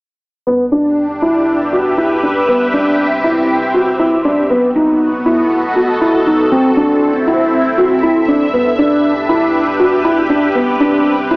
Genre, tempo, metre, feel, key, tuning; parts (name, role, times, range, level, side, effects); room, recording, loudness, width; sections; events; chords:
electronica; 119 BPM; 4/4; straight; E minor; A4 = 440 Hz
lush unison pad; sustained chords; 0.5-11.4 s; B3 to E5; -15 LUFS; equal; chorus, phaser, cassette tape
felt-muted upright piano; riff; 0.5-11.4 s; B3 to F#4; -12 LUFS; equal; low-pass filter, cassette tape, analog delay
round analog bass; bass; 0.5-11.4 s; B1 to E2; -38 LUFS; equal; transformer saturation
wet spring reverb, RT60 1.3 s, small room ambience; home recording on cassette, small speaker sound; -11 LUFS; side -31 dB against mid
0.5-11.4 A section
filter sweep on felt piano 0.5-11.4
0.5 Em7; 2.5 Cmaj7; 4.5 B7; 6.5 Am/C; 8.5 Em7; 10.6 Cmaj7